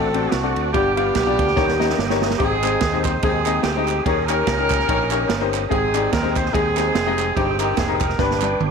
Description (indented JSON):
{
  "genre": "uptempo gospel",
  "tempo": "145 BPM",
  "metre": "4/4",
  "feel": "swing 56% on 8ths",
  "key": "unclear",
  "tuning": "A4 = 440 Hz",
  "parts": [
    { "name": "warm horn section", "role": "melody", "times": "0.0-8.7 s", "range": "A3 to C5", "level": "-21 LUFS", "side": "right 2 dB", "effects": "tape echo" },
    { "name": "clear upright piano", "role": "accompaniment", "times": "0.0-8.7 s", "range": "G2 to F5", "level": "-23 LUFS", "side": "left 14 dB", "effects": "none" },
    { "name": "mellow tonewheel organ", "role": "sustained chords", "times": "0.0-8.7 s", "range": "B4 to Eb6", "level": "-30 LUFS", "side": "right 12 dB", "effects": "fast rotary speaker, chorus vibrato" },
    { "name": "modern bright fingered electric bass", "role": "bass", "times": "0.0-8.7 s", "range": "F1 to Eb2", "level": "-26 LUFS", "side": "equal", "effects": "none" },
    { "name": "swinging big-band drum kit", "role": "drums", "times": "0.1-8.7 s", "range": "crash cymbal, kick drum, ride cymbal, snare drum, toms", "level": "-24 LUFS", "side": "right 4 dB", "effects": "none" },
    { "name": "group handclap", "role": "percussion", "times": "2.6-8.5 s", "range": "none", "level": "-31 LUFS", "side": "right 16 dB", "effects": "none" }
  ],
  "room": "moderate echo chamber reverb, RT60 1.4 s, small room ambience",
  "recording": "1960s-style stereo with parts hard left and right",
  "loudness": "-17 LUFS",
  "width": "side -5 dB against mid",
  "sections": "0.0-8.7 A section",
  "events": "drum fill 1.6-2.4, 8.2-8.7",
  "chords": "0.0 D7; 0.7 G7; 1.6 Eb7; 2.4 Abmaj7; 4.1 Eb7; 5.7 Abmaj7; 7.4 Cm/G; 8.2 G"
}